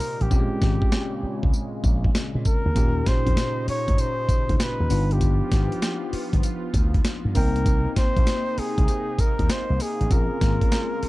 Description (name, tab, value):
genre	R&B, new jack swing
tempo	98 BPM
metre	4/4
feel	swing 67% on 16ths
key	Bb dorian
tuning	A4 = 440 Hz
part	trumpet with bucket mute	melody	0.0-11.1 s	G4 to Db5	-29 LUFS	equal	tape echo
part	bell-like tine electric piano	accompaniment	0.0-11.1 s	Bb2 to G5	-30 LUFS	left 2 dB	medium stereo tremolo
part	lush unison pad	sustained chords	0.0-11.1 s	Bb2 to F4	-34 LUFS	right 1 dB	chorus, phaser
part	breakbeat sampler-style drum kit	drums	0.0-11.1 s	hi-hat, kick drum, snare drum, tambourine	-22 LUFS	equal	none
part	slap bass with an envelope filter	bass	0.2-11.1 s	G1 to Bb2	-24 LUFS	equal	none
room	little or no reverb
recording	dark, warm production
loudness	-20 LUFS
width	side -19 dB against mid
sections	0.0-11.1 A section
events	hi-hats muted 0.3-2.8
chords	0.3 Bbm9; 2.8 Eb7; 4.9 G7b13; 7.4 Cm7; 10.1 Bbm9